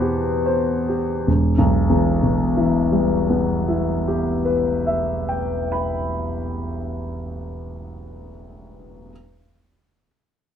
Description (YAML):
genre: classical, impressionist solo piano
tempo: 43 BPM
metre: 4/4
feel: rubato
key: E minor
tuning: A4 = 440 Hz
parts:
  - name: clear concert grand piano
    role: solo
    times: 0.0-9.1 s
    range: E1 to B5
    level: -19 LUFS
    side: left 1 dB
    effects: none
room: moderate studio reverb, RT60 0.5 s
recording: none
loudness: -18 LUFS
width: side -8 dB against mid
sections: 0.0-1.3 A section; 1.3-6.8 B section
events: slowing down 0.0-1.3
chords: 0.0 Cmaj7/E; 1.3 Em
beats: | 1.25 2.66 4.06 5.43